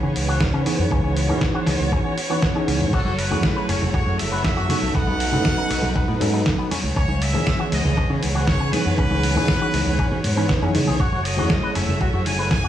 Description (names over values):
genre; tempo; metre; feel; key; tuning
nu-disco, nu disco; 119 BPM; 4/4; straight; C# minor; A4 = 440 Hz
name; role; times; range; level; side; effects
tine electric piano; accompaniment; 0.0-12.7 s; D#3 to B4; -25 LUFS; equal; overdrive, medium stereo tremolo, tape echo
dark studio violin section; sustained chords; 0.0-12.7 s; A3 to C#5; -28 LUFS; right 1 dB; sidechain pumping
electric guitar with an envelope filter; riff; 0.0-12.7 s; F#3 to B4; -30 LUFS; left 3 dB; lush chorus, tape echo
fingered electric bass with an envelope filter; bass; 0.0-12.7 s; F#1 to C#3; -23 LUFS; equal; none
dusty soul sampler-style drum kit; drums; 0.2-12.6 s; crash cymbal, hi-hat, ride cymbal, snare drum; -26 LUFS; equal; none
electronic kick drum; drums; 0.4-12.6 s; none; -24 LUFS; equal; none
muted trumpet section; melody; 2.9-12.7 s; A4 to G#5; -28 LUFS; right 1 dB; tape echo
congas; percussion; 3.0-12.4 s; none; -29 LUFS; right 2 dB; none
room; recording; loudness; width
digital ambience; dry, gritty hardware recording, studio ambience; -18 LUFS; side -11 dB against mid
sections
0.0-12.7 A section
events
none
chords
0.0 C#m7; 2.9 F#m7; 4.9 B7; 6.7 C#m7; 11.0 F#m7